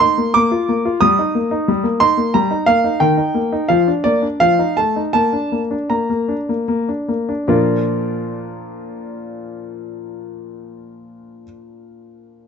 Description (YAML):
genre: classical-period piano sonatina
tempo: 75-90 BPM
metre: 3/4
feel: rubato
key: Bb major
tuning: A4 = 436 Hz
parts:
  - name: warm grand piano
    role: solo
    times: 0.0-12.5 s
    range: Bb2 to Eb6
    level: -15 LUFS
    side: equal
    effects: none
room: light reverb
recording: dark, warm production, nothing above 7.9 kHz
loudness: -14 LUFS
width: side -6 dB against mid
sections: 0.0-7.5 A section; 7.5-12.3 B section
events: slowing down 2.0-7.5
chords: 0.3 Bb; 1.0 Eb/G; 3.0 Eb; 3.7 Bb/F; 4.4 F7; 5.2 Bb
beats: 0.34 | 1.00 1.68 2.35 | 3.02 3.71 4.42 | 5.16 5.92 6.70 | 7.50 8.29 9.08 | 9.87 10.66 11.46